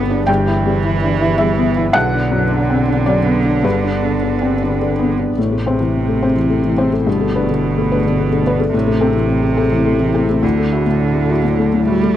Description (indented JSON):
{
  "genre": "neoclassical piano and strings",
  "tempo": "106 BPM",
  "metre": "3/4",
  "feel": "rubato",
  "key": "A dorian",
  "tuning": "A4 = 441 Hz",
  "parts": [
    { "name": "clear cello", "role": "second line", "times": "0.0-12.2 s", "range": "B2 to B3", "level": "-20 LUFS", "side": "right 7 dB", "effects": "none" },
    { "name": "felt-muted upright piano", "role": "accompaniment", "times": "0.0-12.2 s", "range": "B1 to G5", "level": "-16 LUFS", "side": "left 3 dB", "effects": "none" },
    { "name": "ethereal airy pad", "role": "sustained chords", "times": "0.0-12.1 s", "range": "F#3 to C5", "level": "-25 LUFS", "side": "equal", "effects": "ensemble chorus, built-in reverb" },
    { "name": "clear double bass", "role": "bass", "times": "0.0-12.1 s", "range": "G1 to D2", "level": "-21 LUFS", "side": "equal", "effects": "none" }
  ],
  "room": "little or no reverb",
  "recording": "dry, close 1970s-style studio recording",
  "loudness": "-13 LUFS",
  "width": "side -11 dB against mid",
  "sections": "0.0-5.4 A section; 5.4-12.2 B section",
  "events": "none",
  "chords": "0.3 Em/G; 1.9 Bm; 3.6 G; 5.4 Am; 7.1 Gadd9; 8.7 Am; 10.4 Dadd9"
}